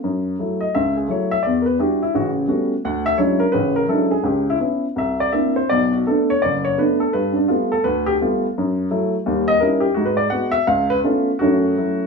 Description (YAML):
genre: solo jazz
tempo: 169 BPM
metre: 4/4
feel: swing 65% on 8ths, rubato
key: F# minor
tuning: A4 = 445 Hz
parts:
  - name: warm upright piano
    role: solo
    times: 0.0-12.1 s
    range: F#1 to F#5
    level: -17 LUFS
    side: equal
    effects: none
room: light reverb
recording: small room ambience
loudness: -17 LUFS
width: side -4 dB against mid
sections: 0.0-11.4 A section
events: upright piano solo 0.0-11.4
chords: 0.0 F#m7; 1.4 Em9; 2.1 A13; 2.8 Dmaj9#11; 4.3 C#m7b5; 5.0 C9; 5.7 Bm7; 7.1 G9; 8.6 F#m7; 9.3 D#7b9; 10.0 G#m7b5; 10.7 C#aug7; 11.4 F#m7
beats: | 0.03 0.39 0.74 1.10 | 1.45 1.80 2.15 2.49 | 2.84 3.19 3.54 3.90 | 4.25 4.61 4.97 5.33 | 5.70 6.07 6.43 6.78 | 7.14 7.50 7.85 8.20 | 8.56 8.90 9.25 9.60 | 9.95 10.31 10.67 11.04 | 11.41 11.78